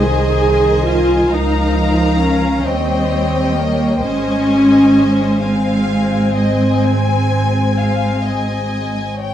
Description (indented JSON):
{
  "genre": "classical, slow romantic movement for string orchestra",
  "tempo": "42-46 BPM (dotted quarters)",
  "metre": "12/8",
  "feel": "rubato",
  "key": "Ab major",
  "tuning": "A4 = 440 Hz",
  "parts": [
    { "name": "warm studio violin section", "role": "melody", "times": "0.0-9.3 s", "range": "G5 to Bb5", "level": "-24 LUFS", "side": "left 5 dB", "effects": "none" },
    { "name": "warm studio violin section", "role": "second line", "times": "0.0-9.3 s", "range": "Bb4 to Ab5", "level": "-23 LUFS", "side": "left 3 dB", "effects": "none" },
    { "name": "warm studio viola section", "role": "accompaniment", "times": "0.0-9.2 s", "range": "Bb3 to Ab4", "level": "-16 LUFS", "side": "equal", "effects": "none" },
    { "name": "warm studio cello section", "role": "bass", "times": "0.0-8.9 s", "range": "Eb3 to Ab3", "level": "-21 LUFS", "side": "right 1 dB", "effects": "none" },
    { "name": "warm studio double bass section", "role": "bass", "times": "0.0-9.3 s", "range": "Ab1 to Eb2", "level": "-19 LUFS", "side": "right 2 dB", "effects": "none" }
  ],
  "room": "moderate recital hall reverb, RT60 1.3 s",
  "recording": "close, detailed microphones",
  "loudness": "-13 LUFS",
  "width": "side -11 dB against mid",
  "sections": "0.0-9.3 A section",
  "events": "none",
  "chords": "0.0 Ab/C; 1.3 Bbm/Db; 2.7 Eb7; 4.0 Ab",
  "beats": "0.01 1.33 2.65 | 4.04 5.43 6.85 8.25"
}